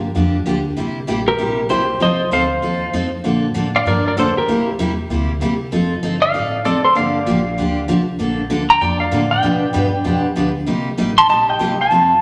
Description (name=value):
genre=country, western swing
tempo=194 BPM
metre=4/4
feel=swing 63% on 8ths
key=unclear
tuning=A4 = 440 Hz
part: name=upright bass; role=bass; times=0.0-12.2 s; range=F1 to B2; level=-27 LUFS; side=equal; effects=none
part: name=picked steel-string acoustic guitar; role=accompaniment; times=0.1-12.1 s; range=B2 to B4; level=-21 LUFS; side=equal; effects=none
part: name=clean lap steel guitar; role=melody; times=1.3-12.2 s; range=G4 to C6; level=-18 LUFS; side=equal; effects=none
room=wet large studio reverb, RT60 1.3 s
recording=none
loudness=-17 LUFS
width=mono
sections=0.0-12.2 A section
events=none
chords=0.0 Gm7; 0.8 C7; 2.0 F7; 3.2 Bbmaj7; 4.5 C7; 5.7 F7; 7.0 Gm7; 8.2 Bbmaj7; 9.4 G7; 10.7 Cm7